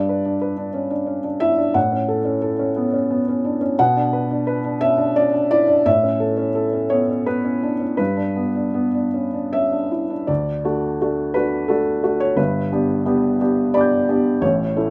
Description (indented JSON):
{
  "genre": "neoclassical minimalist piano",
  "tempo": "75-92 BPM",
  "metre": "3/4",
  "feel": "rubato",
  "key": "unclear",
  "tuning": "A4 = 440 Hz",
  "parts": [
    { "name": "felt-muted upright piano", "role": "solo", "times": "0.0-14.9 s", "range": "G1 to G6", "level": "-20 LUFS", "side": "equal", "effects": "none" }
  ],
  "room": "moderate studio reverb, RT60 0.5 s",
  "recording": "rough home demo mix",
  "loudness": "-20 LUFS",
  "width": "mono",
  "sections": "0.0-10.3 A section; 10.3-14.9 B section",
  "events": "none",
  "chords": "0.0 G; 1.8 A; 3.8 Bm; 5.9 A; 8.0 G; 10.3 D; 12.4 G",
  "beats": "0.41 1.08 | 1.76 2.43 3.10 | 3.78 4.47 5.15 | 5.85 6.56 7.27 | 8.00 8.75 9.54 | 10.29 11.01 11.70 | 12.38 13.06 13.74 | 14.42"
}